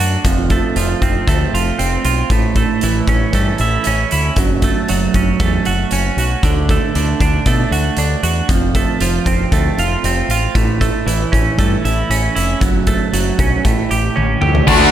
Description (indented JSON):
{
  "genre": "quiet-loud alternative rock",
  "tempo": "116 BPM",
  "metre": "4/4",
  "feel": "straight",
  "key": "unclear",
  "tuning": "A4 = 440 Hz",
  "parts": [
    { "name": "twelve-string electric guitar", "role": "arpeggios", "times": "0.0-14.7 s", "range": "F2 to G4", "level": "-17 LUFS", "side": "right 5 dB", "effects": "slapback echo" },
    { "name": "growling fingered electric bass", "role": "bass", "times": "0.0-14.8 s", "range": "F1 to B2", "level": "-18 LUFS", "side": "equal", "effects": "overdrive" },
    { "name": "big rock drum kit", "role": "drums", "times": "0.2-14.8 s", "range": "crash cymbal, hi-hat, kick drum, toms", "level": "-18 LUFS", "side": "equal", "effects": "none" },
    { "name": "high-gain distorted guitar", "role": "riff", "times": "14.7-14.9 s", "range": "D3 to D4", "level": "-12 LUFS", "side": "left 1 dB", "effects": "distortion" },
    { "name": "thick fuzz guitar", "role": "riff", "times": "14.7-14.9 s", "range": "D3 to F#4", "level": "-12 LUFS", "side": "left 11 dB", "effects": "distortion" },
    { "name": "thick fuzz guitar", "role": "riff", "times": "14.7-14.9 s", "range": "D3 to A4", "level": "-14 LUFS", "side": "right 6 dB", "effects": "distortion" }
  ],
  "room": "light reverb, small room ambience",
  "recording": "none",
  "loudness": "-13 LUFS",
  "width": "side -11 dB against mid",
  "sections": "0.0-14.7 A section",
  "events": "drum fill 14.2-14.7",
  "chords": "0.2 F; 2.3 A; 4.4 F#m; 6.4 D; 8.5 F; 10.6 A; 12.6 F#m; 13.7 A7"
}